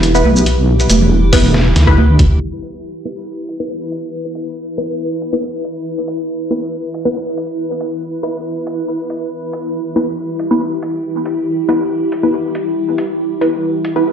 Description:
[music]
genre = deep dubstep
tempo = 139 BPM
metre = 4/4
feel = swing 54% on 16ths, half-time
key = E minor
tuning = A4 = 438 Hz
[part]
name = granular cloud pad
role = sustained chords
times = 0.0-14.1 s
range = E4 to B4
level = -19 LUFS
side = equal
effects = built-in reverb
[part]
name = deep soft wobble bass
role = bass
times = 0.0-2.4 s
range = E1 to D2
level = -12 LUFS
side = equal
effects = chorus
[part]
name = trip hop sampler-style drum kit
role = drums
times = 0.0-13.9 s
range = hi-hat, shaker, snare drum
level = -20 LUFS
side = equal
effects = low-pass filter on hats, low-pass filter on perc, low-pass filter on snare
[part]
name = filtered dub chord stab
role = stabs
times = 0.1-14.1 s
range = B3 to B4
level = -19 LUFS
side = left 1 dB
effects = phaser, dub echo
[part]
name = congas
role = percussion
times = 0.3-2.1 s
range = none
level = -18 LUFS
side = right 4 dB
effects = dub echo
[part]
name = electronic kick drum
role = drums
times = 1.3-2.3 s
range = none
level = -14 LUFS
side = equal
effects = none
[sound]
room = light reverb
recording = played on a big sound system in a bare room, stone room reverb, low-pass filter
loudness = -14 LUFS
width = side -8 dB against mid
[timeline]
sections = 0.0-2.4 A section; 2.4-14.1 B section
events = drop 0.0-2.4; filter sweep on synth stab 2.4-14.1; filter sweep 2.4-14.1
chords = 0.0 E5

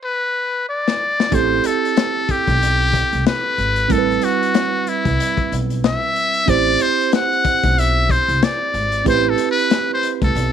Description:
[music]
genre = hip hop, jazz-hop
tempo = 93 BPM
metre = 4/4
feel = swing 59% on 16ths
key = A dorian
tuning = A4 = 441 Hz
[part]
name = trumpet with metal mute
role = melody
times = 0.0-10.5 s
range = E4 to F#5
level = -18 LUFS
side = left 2 dB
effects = none
[part]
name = crunchy breakbeat drum kit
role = drums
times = 0.9-10.5 s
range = hi-hat, kick drum, snare drum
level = -21 LUFS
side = left 5 dB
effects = none
[part]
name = mellow tine electric piano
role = accompaniment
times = 1.3-10.5 s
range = G3 to C5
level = -22 LUFS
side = right 16 dB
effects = medium stereo tremolo
[part]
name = upright bass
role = bass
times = 1.3-10.5 s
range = G#1 to C2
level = -21 LUFS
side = equal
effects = none
[sound]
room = light reverb, studio ambience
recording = 1960s-style stereo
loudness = -15 LUFS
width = side -9 dB against mid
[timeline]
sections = 0.0-1.3 A section; 1.3-10.5 B section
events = stop 0.0-1.3; drum fill 0.0-1.3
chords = 0.0 N.C.; 1.3 Am9

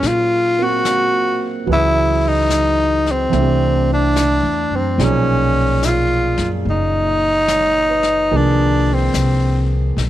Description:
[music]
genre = jazz ballad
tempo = 72 BPM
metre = 4/4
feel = swing 68% on 8ths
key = unclear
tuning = A4 = 440 Hz
[part]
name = growling tenor saxophone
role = melody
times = 0.0-9.7 s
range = C4 to Gb4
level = -16 LUFS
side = left 1 dB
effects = none
[part]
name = warm concert grand piano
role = accompaniment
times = 0.0-10.0 s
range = Bb2 to D#5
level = -23 LUFS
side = right 9 dB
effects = none
[part]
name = upright bass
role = bass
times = 0.0-10.1 s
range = F#1 to Bb2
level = -19 LUFS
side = left 1 dB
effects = none
[part]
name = jazz brush drum kit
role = drums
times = 0.0-10.1 s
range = brushed snare drum, hi-hat, snare drum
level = -29 LUFS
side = left 7 dB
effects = none
[sound]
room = light reverb, small room ambience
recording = 1960s-style stereo with parts hard left and right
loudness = -14 LUFS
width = side -13 dB against mid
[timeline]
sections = 0.0-10.1 A section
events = none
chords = 0.0 Gbadd9; 1.7 Dbm9; 3.3 Cadd9; 5.0 B69; 8.3 Ab69/C

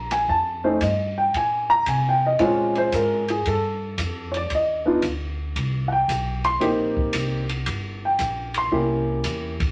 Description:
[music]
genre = jazz, small-group swing and bop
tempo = 114 BPM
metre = 4/4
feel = swing 68% on 8ths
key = unclear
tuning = A4 = 440 Hz
[part]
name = warm baby grand piano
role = accompaniment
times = 0.0-9.5 s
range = Ab3 to C6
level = -24 LUFS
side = equal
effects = none
[part]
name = upright bass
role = bass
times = 0.0-9.7 s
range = G1 to C3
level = -31 LUFS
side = equal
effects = none
[part]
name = open jazz drum kit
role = drums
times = 0.1-9.7 s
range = hi-hat, kick drum, ride cymbal, snare drum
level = -34 LUFS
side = equal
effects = none
[sound]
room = moderate studio reverb, RT60 0.7 s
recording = none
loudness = -23 LUFS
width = mono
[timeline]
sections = 0.0-9.7 A section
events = none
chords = 0.3 F7b13; 1.3 Bbm9; 3.4 G7(no3); 5.6 Cm7; 7.7 Gmadd11; 8.7 C7b9

